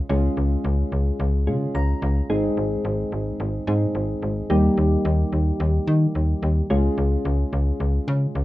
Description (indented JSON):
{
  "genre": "synth-pop",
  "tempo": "109 BPM",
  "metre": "4/4",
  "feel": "straight",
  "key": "unclear",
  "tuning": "A4 = 440 Hz",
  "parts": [
    { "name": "soft electric-piano-like synth keys", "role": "accompaniment", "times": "0.0-8.4 s", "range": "G3 to Bb5", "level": "-24 LUFS", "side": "equal", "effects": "chorus, plate reverb" },
    { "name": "slap-like FM bass", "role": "bass", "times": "0.1-8.4 s", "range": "Ab1 to Eb3", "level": "-21 LUFS", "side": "equal", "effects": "none" }
  ],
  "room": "light reverb",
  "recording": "rough home demo mix, small room ambience",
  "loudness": "-20 LUFS",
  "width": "side -16 dB against mid",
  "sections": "0.0-8.4 A section",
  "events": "synth keys fill 1.5-2.3",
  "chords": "0.0 Db6; 2.3 Ab; 4.5 Eb; 6.7 Db",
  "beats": "| 0.10 0.65 1.20 1.75 | 2.30 2.85 3.40 3.95 | 4.50 5.05 5.60 6.15 | 6.70 7.25 7.80 8.35"
}